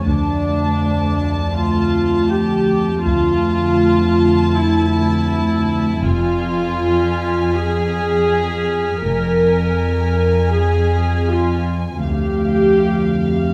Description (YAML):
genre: cinematic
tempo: 80 BPM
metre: 4/4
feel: straight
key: unclear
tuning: A4 = 436 Hz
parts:
  - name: warm studio viola section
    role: accompaniment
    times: 0.0-13.5 s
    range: D4 to Bb4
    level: -21 LUFS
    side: equal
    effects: none
  - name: dark studio violin section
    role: melody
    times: 0.1-13.5 s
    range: F5 to A5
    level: -31 LUFS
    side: equal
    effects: none
  - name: dark studio cello section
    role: bass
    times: 0.1-13.5 s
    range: D2 to F2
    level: -23 LUFS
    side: equal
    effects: none
  - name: dark studio double bass section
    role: bass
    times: 0.1-12.8 s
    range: F1 to D2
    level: -26 LUFS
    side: equal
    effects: none
  - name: analog drone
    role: drone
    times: 0.1-13.5 s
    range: F2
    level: -24 LUFS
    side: equal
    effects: chorus
  - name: warm studio violin section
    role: texture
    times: 6.1-11.6 s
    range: F6 to B6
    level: -34 LUFS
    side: equal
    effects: none
room: light reverb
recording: close, detailed microphones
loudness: -17 LUFS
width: mono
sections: 0.0-13.5 A section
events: none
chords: 0.0 Dm; 6.0 Fm; 12.0 Dm